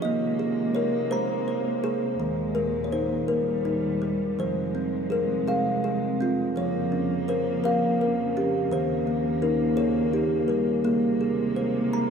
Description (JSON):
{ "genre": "children's music, lullaby", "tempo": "56 BPM (dotted quarters)", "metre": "6/8", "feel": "rubato", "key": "Ab major", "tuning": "A4 = 444 Hz", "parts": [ { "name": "kalimba", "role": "melody", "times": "0.0-12.1 s", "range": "Eb3 to Bb5", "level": "-24 LUFS", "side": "equal", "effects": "none" }, { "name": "dark chamber string section", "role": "sustained chords", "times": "0.0-12.1 s", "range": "Eb2 to Bb3", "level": "-28 LUFS", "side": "right 1 dB", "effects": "none" } ], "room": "wet cathedral reverb, RT60 5.7 s", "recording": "in a vast, echoing space", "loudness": "-23 LUFS", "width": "side -6 dB against mid", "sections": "0.0-12.1 A section", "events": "none", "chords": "0.0 Abadd9; 2.2 Ebsus4; 3.3 Eb; 4.4 Fm; 6.6 Bbm/F; 8.7 Eb7; 10.8 Abadd9" }